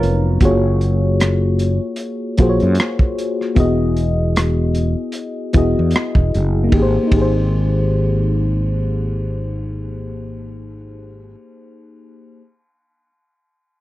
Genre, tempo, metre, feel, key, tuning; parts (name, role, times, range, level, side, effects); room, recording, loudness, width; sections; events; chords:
R&B, neo-soul; 76 BPM; 4/4; swing 56% on 16ths; Ab major; A4 = 440 Hz
mellow FM electric piano; accompaniment; 0.0-12.4 s; F#3 to D#5; -20 LUFS; left 2 dB; chorus
fretless electric bass; bass; 0.0-11.3 s; E1 to Gb2; -18 LUFS; equal
crunchy breakbeat drum kit; drums; 0.0-7.4 s; hi-hat, kick drum, ride cymbal, rim click; -16 LUFS; equal
little or no reverb; dry, close 1970s-style studio recording; -15 LUFS; side -16 dB against mid
0.0-6.7 A section; 6.7-9.9 B section
0.4 Gbmaj9; 3.6 Emaj9; 6.7 Abmaj9